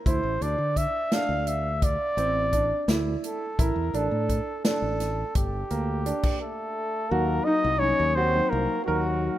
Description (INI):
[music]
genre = progressive instrumental, band music in an uneven meter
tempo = 170 BPM (eighths)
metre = 5/8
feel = straight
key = unclear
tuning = A4 = 440 Hz
[part]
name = mellow trumpet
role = melody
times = 0.1-9.4 s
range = Gb4 to F5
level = -27 LUFS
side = equal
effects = digital delay
[part]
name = clear concert grand piano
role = arpeggios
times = 0.1-9.4 s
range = Bb3 to Bb4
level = -30 LUFS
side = right 3 dB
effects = none
[part]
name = modern bright fingered electric bass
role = bass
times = 0.1-9.3 s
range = G1 to D3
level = -29 LUFS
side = equal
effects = none
[part]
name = natural country drum kit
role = drums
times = 0.1-6.4 s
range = crash cymbal, hi-hat, kick drum, snare drum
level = -27 LUFS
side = equal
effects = none
[part]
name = growling trombone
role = second line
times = 6.4-9.4 s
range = Gb3 to Eb4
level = -33 LUFS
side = left 3 dB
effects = none
[part]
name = mellow tine electric piano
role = accompaniment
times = 7.1-9.4 s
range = Gb3 to Eb4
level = -31 LUFS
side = left 3 dB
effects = none
[sound]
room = moderate plate reverb, RT60 2.6 s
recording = rough home demo mix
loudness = -23 LUFS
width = side -13 dB against mid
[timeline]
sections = 0.0-7.1 A section; 7.1-9.4 B section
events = none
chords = 0.1 D5; 3.6 Asus4; 5.4 Gm; 7.1 Ebm